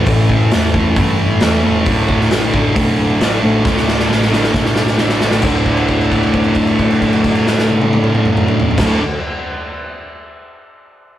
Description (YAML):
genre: garage rock duo or trio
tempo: 134 BPM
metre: 4/4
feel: straight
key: unclear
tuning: A4 = 440 Hz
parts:
  - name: thick fuzz guitar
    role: riff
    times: 0.0-9.0 s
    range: D2 to A3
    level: -14 LUFS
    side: equal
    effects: distortion
  - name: hollow-body short-scale picked electric bass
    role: bass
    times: 0.0-9.0 s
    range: D1 to G2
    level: -21 LUFS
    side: equal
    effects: none
  - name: raw garage drum kit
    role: drums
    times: 0.1-8.9 s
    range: crash cymbal, hi-hat, kick drum, snare drum, toms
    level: -17 LUFS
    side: equal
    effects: none
room: moderate studio ambience, RT60 0.5 s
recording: rough rehearsal-room recording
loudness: -12 LUFS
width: side -12 dB against mid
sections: 0.0-5.5 A section; 5.5-9.1 B section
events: drum fill 3.7-5.5; held note 5.5-8.8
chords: 0.0 A5; 1.9 D5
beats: | 0.09 0.53 0.98 1.43 | 1.87 2.32 2.77 3.21 | 3.66 4.11 4.56 5.01 | 5.45 5.90 6.35 6.80 | 7.25 7.70 8.15 8.60